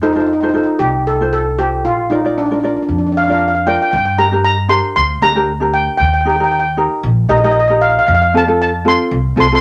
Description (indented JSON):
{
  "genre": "calypso",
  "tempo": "116 BPM",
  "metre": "4/4",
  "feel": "swing 54% on 16ths",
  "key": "unclear",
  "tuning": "A4 = 438 Hz",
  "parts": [
    { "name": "steel pan", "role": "melody", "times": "0.0-9.6 s", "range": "D4 to C6", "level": "-16 LUFS", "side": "equal", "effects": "none" },
    { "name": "ukulele", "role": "accompaniment", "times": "0.0-9.6 s", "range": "C4 to D5", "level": "-19 LUFS", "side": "equal", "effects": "none" },
    { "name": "upright bass", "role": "bass", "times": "0.0-9.6 s", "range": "Bb1 to G2", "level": "-21 LUFS", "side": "equal", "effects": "none" }
  ],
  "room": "moderate club reverb, RT60 0.5 s",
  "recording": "none",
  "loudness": "-14 LUFS",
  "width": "mono",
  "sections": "0.0-3.9 A section; 3.9-9.6 B section",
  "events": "none",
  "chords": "0.0 F; 1.8 Bb; 3.9 Gm; 6.0 Eb; 8.1 F",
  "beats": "0.29 0.81 1.33 | 1.85 2.37 2.89 3.41 | 3.93 4.45 4.96 5.48 | 6.00 6.52 7.04 7.56 | 8.08 8.59 9.11"
}